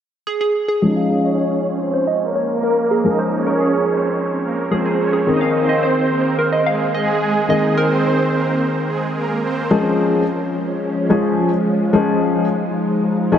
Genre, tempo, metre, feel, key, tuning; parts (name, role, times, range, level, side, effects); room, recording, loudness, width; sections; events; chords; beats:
pop; 108 BPM; 4/4; straight; A4 = 442 Hz
glassy wavetable pluck; melody; 0.3-9.4 s; Ab4 to F5; -21 LUFS; right 1 dB; chorus, phaser, low-pass filter, analog delay
supersaw pad; melody; 0.8-9.5 s; Ab3 to Eb5; -20 LUFS; right 3 dB; low-pass filter, analog delay
dark baby grand piano; accompaniment; 0.8-13.4 s; Eb3 to Ab4; -19 LUFS; left 2 dB; lush chorus, low-pass filter
soft string machine; sustained chords; 10.3-13.4 s; F3 to F4; -19 LUFS; left 1 dB; ensemble chorus
wet huge ambient reverb, RT60 4.2 s; dreamy mix soaked in reverb, nothing above 10.7 kHz; -15 LUFS; side -9 dB against mid
0.8-9.7 A section; 9.7-13.4 B section
filter sweep 0.8-9.7
0.0 N.C.; 0.8 Db; 5.3 Abadd9; 9.7 Db
0.27 | 0.82 1.38 1.94 2.49 | 3.05 3.60 4.16 4.71 | 5.27 5.82 6.38 6.93 | 7.49 8.05 8.60 9.16 | 9.71 10.27 10.82 11.38 | 11.94 12.49 13.05